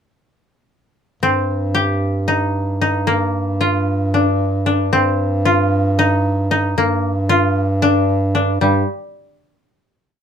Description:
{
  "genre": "contemporary instrumental, chamber music in an uneven meter",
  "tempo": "228 BPM (eighths)",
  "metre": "7/8",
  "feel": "straight",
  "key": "G minor",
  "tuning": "A4 = 438 Hz",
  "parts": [
    { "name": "koto", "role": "arpeggios", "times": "1.2-8.9 s", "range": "G3 to G4", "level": "-18 LUFS", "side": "left 1 dB", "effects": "none" },
    { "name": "mellow bass clarinet", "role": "bass", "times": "1.2-8.8 s", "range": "G2", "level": "-18 LUFS", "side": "right 1 dB", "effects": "none" }
  ],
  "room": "moderate studio reverb, RT60 0.6 s",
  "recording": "close, detailed microphones",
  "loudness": "-15 LUFS",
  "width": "side -8 dB against mid",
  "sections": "1.2-8.6 A section; 8.6-10.2 final note",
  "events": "none",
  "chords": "1.2 Cm/G; 3.1 Bb/G; 8.6 N.C."
}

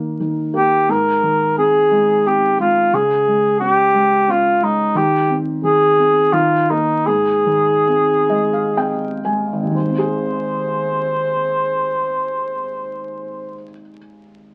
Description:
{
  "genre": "children's music, lullaby",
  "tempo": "57-90 BPM",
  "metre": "3/4",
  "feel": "straight",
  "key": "Ab major",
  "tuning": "A4 = 441 Hz",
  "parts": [
    { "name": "felt-muted upright piano", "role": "accompaniment", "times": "0.0-14.5 s", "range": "Ab1 to Ab5", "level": "-24 LUFS", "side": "equal", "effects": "none" },
    { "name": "dark cor anglais", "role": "melody", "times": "0.6-13.8 s", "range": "Eb4 to C5", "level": "-18 LUFS", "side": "equal", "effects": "none" }
  ],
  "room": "light reverb",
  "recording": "very old 78 rpm record, vinyl crackle",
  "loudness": "-17 LUFS",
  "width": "mono",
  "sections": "0.0-9.8 A section; 9.8-14.5 B section",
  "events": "slowing down 4.9-9.8; felt piano fill 7.9-9.8",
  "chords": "0.0 Eb5; 0.9 Ab; 2.9 Db5; 4.9 Ab/Eb; 6.3 Eb5; 7.1 Ab"
}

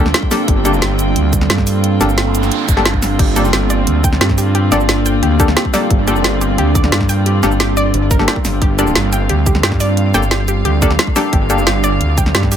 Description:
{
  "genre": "dark technical drum and bass",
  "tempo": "177 BPM",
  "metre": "4/4",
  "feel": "straight",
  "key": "G minor",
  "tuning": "A4 = 440 Hz",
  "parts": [
    { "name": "deep dark ambient pad", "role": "sustained chords", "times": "0.0-12.6 s", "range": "G3 to D5", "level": "-20 LUFS", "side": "right 2 dB", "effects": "chorus, built-in reverb, sidechain pumping" },
    { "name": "filtered dub chord stab", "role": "stabs", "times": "0.0-11.6 s", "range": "Bb3 to A4", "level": "-20 LUFS", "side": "left 3 dB", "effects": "wide subtle chorus, tape echo" },
    { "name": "growling FM bass", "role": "bass", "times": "0.0-12.6 s", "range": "G1 to G2", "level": "-16 LUFS", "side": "equal", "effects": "none" },
    { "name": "warm studio string section", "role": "texture", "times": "0.0-12.6 s", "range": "Bb3 to G5", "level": "-23 LUFS", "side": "right 1 dB", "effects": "sidechain pumping" },
    { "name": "drum and bass drum kit", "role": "drums", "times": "0.1-12.6 s", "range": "cabasa, crash cymbal, hi-hat, snare drum", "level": "-18 LUFS", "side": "equal", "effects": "none" },
    { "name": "electronic kick drum", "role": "drums", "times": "0.2-12.5 s", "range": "none", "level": "-15 LUFS", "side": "equal", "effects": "none" },
    { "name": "wide detuned saw bass", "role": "bass", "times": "0.5-1.1, 3.2-3.9, 5.9-9.3, 11.3-12.0 s", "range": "G1", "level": "-17 LUFS", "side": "equal", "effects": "chorus, overdrive, sidechain pumping" },
    { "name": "noise sweep", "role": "sound effects", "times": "2.1-3.2 s", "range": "none", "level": "-25 LUFS", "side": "right 6 dB", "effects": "none" },
    { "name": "wide unison pluck", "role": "arpeggios", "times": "3.2-12.6 s", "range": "G4 to G5", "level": "-22 LUFS", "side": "right 2 dB", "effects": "auto-pan, sidechain pumping, tape echo" }
  ],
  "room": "light reverb",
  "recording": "none",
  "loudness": "-11 LUFS",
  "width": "side -9 dB against mid",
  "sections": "0.0-12.6 A section",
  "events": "noise sweep 2.1-3.2",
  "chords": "0.0 Gmadd9"
}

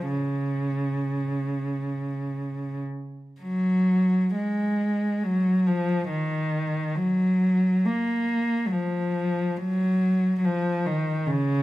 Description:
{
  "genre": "classical, free, expressive piece for unaccompanied cello",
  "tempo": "free time",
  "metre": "none",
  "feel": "none",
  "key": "unclear",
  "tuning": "A4 = 440 Hz",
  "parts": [
    { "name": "warm cello", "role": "solo", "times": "0.0-11.6 s", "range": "Db3 to Bb3", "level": "-23 LUFS", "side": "equal", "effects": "none" }
  ],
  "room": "moderate large studio reverb, RT60 1.4 s",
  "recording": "minimal, uncompressed stereo recording",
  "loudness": "-23 LUFS",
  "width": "side -16 dB against mid",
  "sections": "0.0-3.4 A section; 3.4-11.6 B section",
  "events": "none",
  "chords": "none"
}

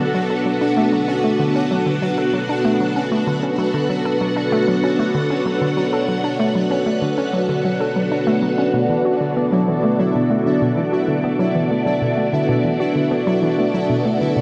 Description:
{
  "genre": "ambient, sequencer-driven space music",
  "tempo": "96 BPM",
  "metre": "4/4",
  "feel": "straight",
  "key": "D major",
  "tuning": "A4 = 440 Hz",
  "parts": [
    { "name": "string machine, full ensemble", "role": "sustained chords", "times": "0.0-14.4 s", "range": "B3 to F#5", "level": "-21 LUFS", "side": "equal", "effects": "phaser, ensemble chorus" },
    { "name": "hollow square pluck", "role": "riff", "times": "0.0-14.4 s", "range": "B2 to A4", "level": "-23 LUFS", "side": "equal", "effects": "chorus, phaser, analog delay" },
    { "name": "pulsing gated texture", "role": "texture", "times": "0.0-14.4 s", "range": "E4 to F#5", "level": "-30 LUFS", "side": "equal", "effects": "chorus, built-in reverb" }
  ],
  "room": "wet huge ambient reverb, RT60 8.6 s",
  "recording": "worn, warbling old tape, cassette tape, warbly pitch drift",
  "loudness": "-19 LUFS",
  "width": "mono",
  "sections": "0.0-14.4 A section",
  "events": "none",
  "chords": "0.0 D6; 8.7 Bm7"
}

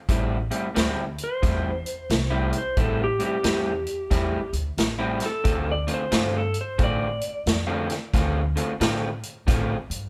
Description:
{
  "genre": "electric blues shuffle",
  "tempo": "90 BPM",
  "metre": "4/4",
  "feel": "swing 63% on 8ths",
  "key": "A minor",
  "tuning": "A4 = 440 Hz",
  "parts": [
    { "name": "electric guitar through a small old amp", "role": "riff", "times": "0.1-9.8 s", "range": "A2 to F4", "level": "-30 LUFS", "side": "equal", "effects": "none" },
    { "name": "upright bass", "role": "bass", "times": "0.1-10.1 s", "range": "A1 to A2", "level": "-31 LUFS", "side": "equal", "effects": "none" },
    { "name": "vintage drum kit", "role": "drums", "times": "0.1-10.0 s", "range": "hi-hat, kick drum, snare drum", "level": "-28 LUFS", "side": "equal", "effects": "none" },
    { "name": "clean lap steel guitar", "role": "melody", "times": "1.2-8.1 s", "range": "G4 to D5", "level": "-31 LUFS", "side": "equal", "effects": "none" }
  ],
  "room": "light reverb",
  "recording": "band playing live in one room",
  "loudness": "-25 LUFS",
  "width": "mono",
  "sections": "0.0-10.1 A section",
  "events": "electric slide guitar solo 0.0-10.1",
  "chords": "0.1 Am7; 5.5 Dm7"
}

